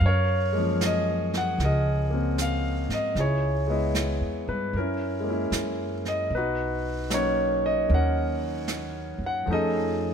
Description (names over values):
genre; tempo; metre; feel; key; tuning
jazz ballad; 76 BPM; 4/4; swing 66% on 8ths; unclear; A4 = 441 Hz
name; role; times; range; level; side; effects
clear grand piano; accompaniment; 0.0-10.1 s; F3 to Gb5; -26 LUFS; left 1 dB; none
upright bass; bass; 0.0-10.1 s; B1 to Ab2; -28 LUFS; right 1 dB; none
jazz brush drum kit; drums; 0.0-10.1 s; brushed snare drum, hi-hat, snare drum; -34 LUFS; right 4 dB; none
room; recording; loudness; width
light reverb; none; -24 LUFS; side -7 dB against mid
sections
0.0-10.1 A section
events
none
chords
0.0 Gbmaj9; 3.2 Dbm7; 4.7 Gb9; 6.3 Bmaj7; 9.5 F7alt